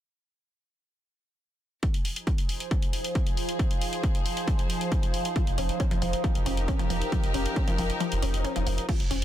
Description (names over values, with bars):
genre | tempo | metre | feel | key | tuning
driving peak-time techno | 136 BPM | 4/4 | straight | F minor | A4 = 440 Hz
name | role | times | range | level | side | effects
overtone-sweeping drone | drone | 2.6-8.9 s | F3 | -35 LUFS | right 3 dB | chorus, built-in reverb, phaser, sidechain pumping
electronic kick drum | drums | 1.8-9.0 s | none | -26 LUFS | equal | overdrive
techno drum kit | drums | 1.8-9.2 s | crash cymbal, hi-hat | -36 LUFS | left 1 dB | overdrive, sidechain pumping on hats, sidechain pumping on cymbals
dark studio string section | texture | 1.8-9.2 s | F3 to C5 | -35 LUFS | left 2 dB | sidechain pumping
resonant blip pluck | riff | 5.4-9.1 s | F3 to Db4 | -33 LUFS | left 1 dB | phaser, overdrive, sidechain pumping, ping-pong delay
saturated sub bass | bass | 5.5-9.2 s | F1 | -30 LUFS | equal | overdrive, sidechain pumping, low-pass filter
room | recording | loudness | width
digital ambience | dense, heavily limited modern master | -25 LUFS | side -12 dB against mid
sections
1.8-8.9 A section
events
fade-in on string section 1.8-8.9; kick drops out 8.0-8.9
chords
1.8 Fm